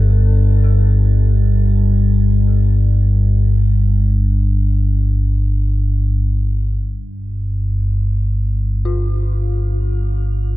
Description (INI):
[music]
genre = dark ambient drone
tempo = free time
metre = none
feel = none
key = unclear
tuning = A4 = 445 Hz
[part]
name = dark detuned synth bell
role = arpeggios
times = 0.0-10.6 s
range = F4 to A4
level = -31 LUFS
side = left 2 dB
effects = chorus, tape echo, shimmer reverb
[part]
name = deep rumbling drone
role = drone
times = 0.0-10.6 s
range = G1 to G2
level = -14 LUFS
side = equal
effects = built-in reverb, wide subtle chorus
[sound]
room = light reverb, digital ambience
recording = dark, warm production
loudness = -13 LUFS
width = side -17 dB against mid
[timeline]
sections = 0.0-6.8 A section; 6.8-10.6 B section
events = none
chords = 0.0 N.C.; 6.8 Fsus2/G